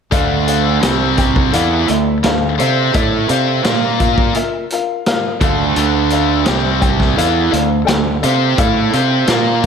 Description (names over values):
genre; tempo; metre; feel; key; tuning
classic rock; 85 BPM; 4/4; straight; D minor; A4 = 440 Hz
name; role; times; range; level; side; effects
dark upright piano; accompaniment; 0.1-9.7 s; F4 to G5; -21 LUFS; left 6 dB; slapback echo
raw garage guitar; riff; 0.1-9.7 s; C3 to C5; -18 LUFS; right 10 dB; overdrive, slapback echo
tight distorted guitar; riff; 0.1-9.7 s; C3 to C5; -19 LUFS; left 12 dB; distortion, slapback echo
growling fingered electric bass; bass; 0.1-9.7 s; C2 to C3; -19 LUFS; equal; overdrive
vintage drum kit; drums; 0.1-9.7 s; hi-hat, kick drum, snare drum; -18 LUFS; equal; none
room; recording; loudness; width
moderate lush hall reverb, RT60 1.5 s, studio reverb; big arena sound; -12 LUFS; side -6 dB against mid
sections
0.1-9.7 A section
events
none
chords
0.1 Dm; 0.8 C5; 1.5 Dm; 3.6 Bb5; 5.4 Dm; 6.5 C5; 7.2 Dm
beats
| 0.12 0.83 1.53 2.24 | 2.94 3.65 4.36 5.06 | 5.77 6.47 7.18 7.88 | 8.59 9.29